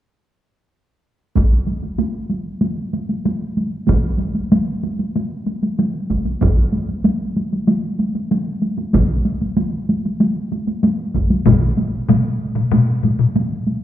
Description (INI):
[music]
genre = japanese traditional, taiko drum ensemble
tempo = 95 BPM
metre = 4/4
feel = straight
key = none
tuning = none
[part]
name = taiko ensemble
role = percussion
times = 1.4-13.8 s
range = none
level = -19 LUFS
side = right 1 dB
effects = none
[part]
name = taiko ensemble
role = percussion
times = 1.4-11.6 s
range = none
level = -18 LUFS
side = equal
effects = none
[part]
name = taiko ensemble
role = percussion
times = 11.5-13.3 s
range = none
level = -17 LUFS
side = left 3 dB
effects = none
[sound]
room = wet recital hall reverb, RT60 1.6 s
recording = recorded in a church or concert hall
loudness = -16 LUFS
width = side -12 dB against mid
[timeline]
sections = 1.4-11.5 A section; 11.5-13.8 B section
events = none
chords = none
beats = | 1.36 1.99 2.62 3.25 | 3.88 4.51 5.14 5.78 | 6.41 7.04 7.67 8.30 | 8.93 9.56 10.20 10.83 | 11.46 12.09 12.72 13.35